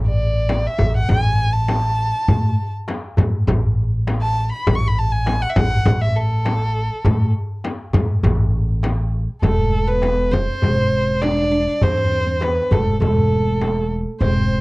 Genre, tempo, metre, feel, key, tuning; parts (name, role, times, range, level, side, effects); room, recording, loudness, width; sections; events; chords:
Arabic maqam ensemble; 101 BPM; 4/4; straight; E maqam bayati from 9.4 s; A4 = 442 Hz
upright bass; bass; 0.0-14.6 s; E1 to A2; -19 LUFS; equal
warm violin; melody; 0.1-14.6 s; A4 to C#6; -22 LUFS; equal
darbuka; percussion; 0.5-14.3 s; -22 LUFS; equal
frame drum; percussion; 0.5-14.4 s; -24 LUFS; left 1 dB
oud; second line; 9.4-14.6 s; A3 to D4; -24 LUFS; right 3 dB
little or no reverb; cassette tape; -16 LUFS; side -23 dB against mid
0.0-9.4 A section; 9.4-14.6 B section